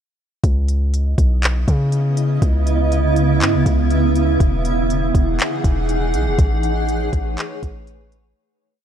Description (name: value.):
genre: hip hop, atmospheric cloud-rap.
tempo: 121 BPM.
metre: 4/4.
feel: half-time.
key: C# minor.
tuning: A4 = 440 Hz.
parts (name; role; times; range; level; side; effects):
granular cloud pad; sustained chords; 1.8-8.4 s; C#3 to F#5; -20 LUFS; right 2 dB; built-in reverb, sidechain pumping.
long sustained 808-style bass; bass; 0.4-8.3 s; E1 to C#3; -19 LUFS; equal; none.
smooth R&B drum kit; drums; 0.4-8.2 s; handclaps, hi-hat, kick drum; -19 LUFS; equal; none.
room: little or no reverb.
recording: none.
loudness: -15 LUFS.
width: side -9 dB against mid.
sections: 0.4-8.4 verse.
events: fade-out 6.4-8.4.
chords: 0.4 C#m9; 4.4 Emaj9; 6.4 Amaj9.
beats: | 0.44 0.93 1.43 1.92 | 2.42 2.92 3.41 3.91 | 4.40 4.90 5.39 5.89 | 6.39 6.88 7.38 7.87.